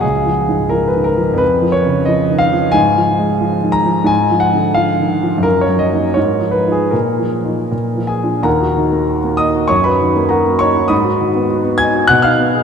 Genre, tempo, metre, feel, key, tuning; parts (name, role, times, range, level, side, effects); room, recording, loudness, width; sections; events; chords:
classical, romantic character piece for solo piano; 75-102 BPM; 2/4; rubato; Eb minor; A4 = 440 Hz
warm concert grand piano; solo; 0.0-12.6 s; C#2 to Ab6; -12 LUFS; equal
wet cathedral reverb, RT60 4.9 s; in a vast, echoing space; -12 LUFS; side -7 dB against mid
0.0-8.5 A section; 8.5-12.6 B section
0.0 C#; 1.4 C#/E#; 2.8 Fmadd11/Ab; 4.1 Ddim/Ab; 5.4 Ebm/Gb; 6.2 Abm6; 6.9 Bbsus4; 7.7 Bb; 8.5 Ebm; 9.7 Ebm/Gb; 10.9 Abm7; 12.1 Abm/Cb